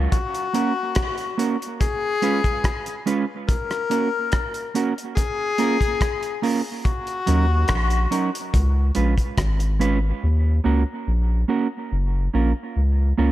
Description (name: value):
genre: dub reggae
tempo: 71 BPM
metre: 4/4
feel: straight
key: Eb minor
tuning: A4 = 440 Hz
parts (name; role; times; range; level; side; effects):
- soft dub sub bass; bass; 0.0-0.1, 7.3-13.3 s; Gb1 to Eb2; -19 LUFS; equal; none
- clear tenor saxophone; second line; 0.1-8.1 s; Gb4 to Bb4; -25 LUFS; left 5 dB; dub echo
- cloth-damped thuddy drum kit; drums; 0.1-10.0 s; hi-hat, kick drum, rim click; -24 LUFS; equal; none
- mellow electric guitar; accompaniment; 0.5-13.3 s; Gb3 to Cb5; -25 LUFS; right 5 dB; dub echo
room: light reverb, small room ambience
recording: echo-heavy mix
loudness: -20 LUFS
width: side -14 dB against mid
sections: 0.0-13.3 A section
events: break 0.1-6.9; part muted 10.2-13.3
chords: 0.1 Gb/Bb; 1.8 Db7; 3.5 Bbm; 5.2 Bbm7; 6.9 Ebm7; 8.5 Db7; 10.2 Ebm7; 11.9 Gbmaj7